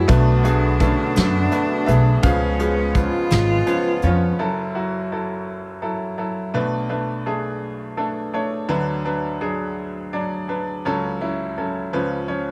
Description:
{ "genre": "acoustic folk-pop ballad", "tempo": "56 BPM (dotted quarters)", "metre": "6/8", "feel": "straight", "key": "F# minor", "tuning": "A4 = 443 Hz", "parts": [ { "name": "bright grand piano", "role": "melody", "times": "0.0-12.5 s", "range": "F#1 to E#5", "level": "-25 LUFS", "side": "equal", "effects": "none" }, { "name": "clear cello", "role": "second line", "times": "0.0-4.4 s", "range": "C#4 to E#4", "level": "-26 LUFS", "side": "equal", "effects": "none" }, { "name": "hand-pumped harmonium", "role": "sustained chords", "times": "0.0-4.4 s", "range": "C#3 to F#4", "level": "-30 LUFS", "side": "equal", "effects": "none" }, { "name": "felt-muted upright piano", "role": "arpeggios", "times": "0.0-3.9 s", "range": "F#4 to G#4", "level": "-31 LUFS", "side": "equal", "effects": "none" }, { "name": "upright bass", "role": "bass", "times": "0.1-4.3 s", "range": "G#1 to F#2", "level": "-21 LUFS", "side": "equal", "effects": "none" }, { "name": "soft brush drum kit", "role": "drums", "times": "0.1-4.2 s", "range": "hi-hat, kick drum, snare drum", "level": "-24 LUFS", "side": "equal", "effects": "none" } ], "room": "light reverb", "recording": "none", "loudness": "-21 LUFS", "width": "mono", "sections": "0.0-4.4 A section; 4.4-12.5 B section", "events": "none", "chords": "0.1 Bm7; 2.2 C#7; 4.4 F#m7; 6.5 Bm7; 8.7 D6; 10.9 F#m/C#; 11.9 C#7", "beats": "| 0.09 1.17 | 2.24 3.32 | 4.39 5.47 | 6.54 7.62 | 8.70 9.78 | 10.85 11.93" }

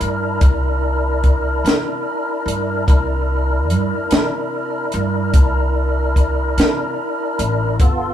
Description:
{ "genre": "slow blues", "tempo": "49 BPM (dotted quarters)", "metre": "12/8", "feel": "straight", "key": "unclear", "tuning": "A4 = 440 Hz", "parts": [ { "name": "tonewheel organ", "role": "sustained chords", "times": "0.0-8.1 s", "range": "B3 to Bb4", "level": "-21 LUFS", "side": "left 1 dB", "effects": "slow rotary speaker, overdrive, chorus vibrato" }, { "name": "upright bass", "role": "bass", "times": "0.0-8.1 s", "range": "G1 to C3", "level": "-20 LUFS", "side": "right 1 dB", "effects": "none" }, { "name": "compact cocktail drum kit", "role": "drums", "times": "0.0-8.0 s", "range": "hi-hat, kick drum, snare drum", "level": "-15 LUFS", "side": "equal", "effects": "none" } ], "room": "light reverb", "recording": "band playing live in one room", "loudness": "-15 LUFS", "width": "side -10 dB against mid", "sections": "0.0-8.1 A section", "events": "none", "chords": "0.0 C9", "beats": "0.42 1.65 | 2.88 4.11 5.34 6.57 | 7.80" }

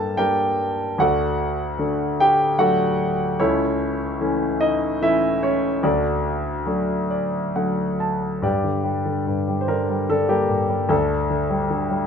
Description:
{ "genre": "classical, lyrical solo piano", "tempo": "74 BPM", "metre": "3/4", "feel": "rubato", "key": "G harmonic minor", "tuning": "A4 = 440 Hz", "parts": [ { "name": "clear grand piano", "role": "solo", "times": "0.0-12.1 s", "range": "C#2 to A5", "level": "-19 LUFS", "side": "equal", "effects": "none" } ], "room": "moderate studio reverb, RT60 0.8 s", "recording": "minimal, uncompressed stereo recording", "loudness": "-19 LUFS", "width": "side -7 dB against mid", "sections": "0.0-8.4 A section; 8.4-12.1 B section", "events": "grand piano fill 6.7-8.4", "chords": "0.0 Gm; 1.0 D; 3.4 A/C#; 5.8 D; 8.4 Gm; 10.9 Dsus4", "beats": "0.18 | 0.99 1.80 2.59 | 3.40 4.21 5.01 | 5.84 6.68 7.57 | 8.44 9.27 10.10 | 10.91 11.72" }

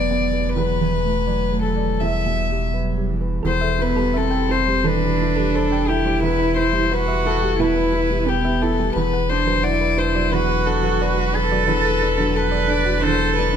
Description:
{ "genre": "neoclassical piano and strings", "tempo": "87 BPM", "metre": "4/4", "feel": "rubato", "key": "E minor", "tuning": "A4 = 440 Hz", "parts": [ { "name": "rich violin", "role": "melody", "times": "0.0-13.6 s", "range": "G4 to E5", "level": "-22 LUFS", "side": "left 7 dB", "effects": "none" }, { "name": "warm cello", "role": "second line", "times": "0.0-13.6 s", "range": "E3 to B4", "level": "-23 LUFS", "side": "right 4 dB", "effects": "none" }, { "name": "felt-muted upright piano", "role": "accompaniment", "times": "0.0-13.6 s", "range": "E2 to E5", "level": "-25 LUFS", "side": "right 3 dB", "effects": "none" }, { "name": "pure sine sub bass", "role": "bass", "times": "0.0-13.6 s", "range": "E1", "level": "-24 LUFS", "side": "equal", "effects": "none" }, { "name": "thumb-piano-like synth pluck", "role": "arpeggios", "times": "3.4-13.6 s", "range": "D4 to B5", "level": "-29 LUFS", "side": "right 2 dB", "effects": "chorus, slapback echo" } ], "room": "light reverb", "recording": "none", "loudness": "-17 LUFS", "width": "side -8 dB against mid", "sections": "0.0-3.4 A section; 3.4-13.6 A section", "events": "none", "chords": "0.0 Bm/E; 0.6 Dadd9/E; 2.0 Emadd9; 3.4 Am7/E; 6.2 Em; 9.0 Bm/E; 11.7 Dadd9/E", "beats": "| 0.57 1.27 2.01 2.73 | 3.44 4.14 4.84 5.53 | 6.22 6.90 7.58 8.27 | 8.95 9.63 10.32 11.00 | 11.68 12.36 13.03" }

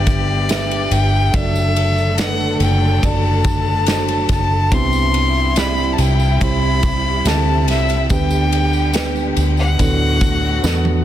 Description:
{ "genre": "pop ballad", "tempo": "71 BPM", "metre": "4/4", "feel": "straight", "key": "G major", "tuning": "A4 = 444 Hz", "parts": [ { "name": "clear violin", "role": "melody", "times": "0.0-10.8 s", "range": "D5 to C6", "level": "-21 LUFS", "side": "left 2 dB", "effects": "ping-pong delay" }, { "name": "felt-muted upright piano", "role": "accompaniment", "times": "0.0-11.0 s", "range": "G2 to E5", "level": "-22 LUFS", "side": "right 4 dB", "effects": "none" }, { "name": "warm symphonic string section", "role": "sustained chords", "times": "0.0-11.0 s", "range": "C3 to A4", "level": "-25 LUFS", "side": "left 3 dB", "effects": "none" }, { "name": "vintage muted fingered electric bass", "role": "bass", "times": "0.0-11.0 s", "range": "F#1 to E2", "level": "-18 LUFS", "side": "equal", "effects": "none" }, { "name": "modern studio drum kit", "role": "drums", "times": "0.1-11.0 s", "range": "kick drum, ride cymbal, snare drum, toms", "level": "-21 LUFS", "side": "equal", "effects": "none" }, { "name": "tambourine", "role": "percussion", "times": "0.1-10.8 s", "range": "none", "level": "-35 LUFS", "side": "right 6 dB", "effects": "none" } ], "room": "light reverb", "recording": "dense, heavily limited modern master", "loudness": "-14 LUFS", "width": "side -12 dB against mid", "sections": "0.0-11.0 A section", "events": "drum fill 10.6-11.0", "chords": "0.0 G; 1.3 D/F#; 4.7 Cmaj7; 8.1 G/D; 9.8 D6", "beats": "0.49 | 1.34 2.18 3.03 3.87 | 4.72 5.56 6.41 7.25 | 8.10 8.94 9.79 10.63" }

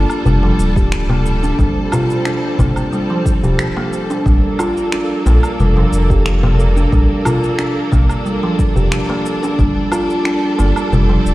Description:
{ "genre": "organic downtempo", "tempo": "90 BPM", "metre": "4/4", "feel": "straight", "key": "G minor", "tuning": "A4 = 438 Hz", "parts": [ { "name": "rich studio string section", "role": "sustained chords", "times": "0.0-11.3 s", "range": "G3 to A4", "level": "-22 LUFS", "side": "equal", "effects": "sidechain pumping" }, { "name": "kalimba", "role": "arpeggios", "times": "0.0-11.2 s", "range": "F3 to G4", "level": "-18 LUFS", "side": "right 1 dB", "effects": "digital delay" }, { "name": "warm sub bass", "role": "bass", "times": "0.0-11.3 s", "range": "D1 to Bb1", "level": "-14 LUFS", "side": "equal", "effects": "tube saturation" }, { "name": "electronic woodblock, shaker and finger snaps", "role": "drums", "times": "0.1-11.3 s", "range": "none", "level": "-25 LUFS", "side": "equal", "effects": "none" }, { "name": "darbuka", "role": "percussion", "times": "0.3-11.2 s", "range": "none", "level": "-21 LUFS", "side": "left 1 dB", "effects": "none" }, { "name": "electronic kick drum", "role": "drums", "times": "0.8-9.7 s", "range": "none", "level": "-17 LUFS", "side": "equal", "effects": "none" } ], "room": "light reverb, small room ambience", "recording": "played on a big sound system in a bare room, large studio reverb", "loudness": "-13 LUFS", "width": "side -17 dB against mid", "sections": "0.0-11.3 A section", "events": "none", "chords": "0.0 Gm9; 4.3 Bbmaj7; 9.6 Gm9", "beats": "0.26 0.92 | 1.59 2.25 2.92 3.59 | 4.25 4.92 5.59 6.25 | 6.92 7.59 8.26 8.92 | 9.59 10.26 10.92" }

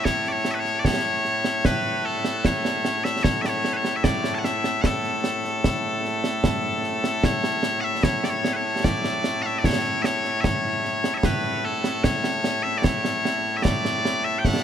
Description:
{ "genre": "scottish traditional, Scottish pipe music", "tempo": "75 BPM", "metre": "3/4", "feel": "straight", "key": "A major", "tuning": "A4 = 440 Hz", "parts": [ { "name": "loud bright bagpipes", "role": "melody", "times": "0.0-14.6 s", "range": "A2 to A5", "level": "-23 LUFS", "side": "left 1 dB", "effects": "none" }, { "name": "concert snare drum and concert bass drum", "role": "drums", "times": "0.1-14.6 s", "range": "none", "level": "-25 LUFS", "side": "right 1 dB", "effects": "none" } ], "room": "moderate huge ambient reverb, RT60 4.9 s", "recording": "heard from further back in the room", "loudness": "-21 LUFS", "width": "side -9 dB against mid", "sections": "0.0-7.2 A section; 7.2-14.6 A section", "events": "none", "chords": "none", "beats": "| 0.05 0.85 1.65 | 2.45 3.25 4.05 | 4.85 5.65 6.45 | 7.25 8.05 8.85 | 9.65 10.45 11.25 | 12.05 12.85 13.65 | 14.45" }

